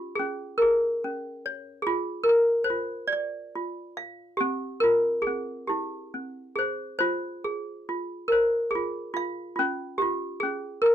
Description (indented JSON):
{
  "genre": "children's music, lullaby",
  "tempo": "47 BPM (dotted quarters)",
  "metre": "6/8",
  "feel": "rubato",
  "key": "F minor",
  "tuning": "A4 = 440 Hz",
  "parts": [
    { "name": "toy piano", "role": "solo", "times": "0.0-10.9 s", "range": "C4 to F5", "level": "-25 LUFS", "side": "equal", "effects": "none" }
  ],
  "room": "little or no reverb",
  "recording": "dry, close 1970s-style studio recording",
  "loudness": "-25 LUFS",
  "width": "side -10 dB against mid",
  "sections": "0.0-7.0 A section; 7.0-10.9 A section",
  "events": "none",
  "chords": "0.0 Db; 1.9 Bb; 4.4 Csus4; 5.7 C; 7.0 Fm; 9.6 Bbm (rootless)",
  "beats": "0.61 | 1.87 3.12 | 4.39 5.70 | 7.02 8.32 | 9.60 10.87"
}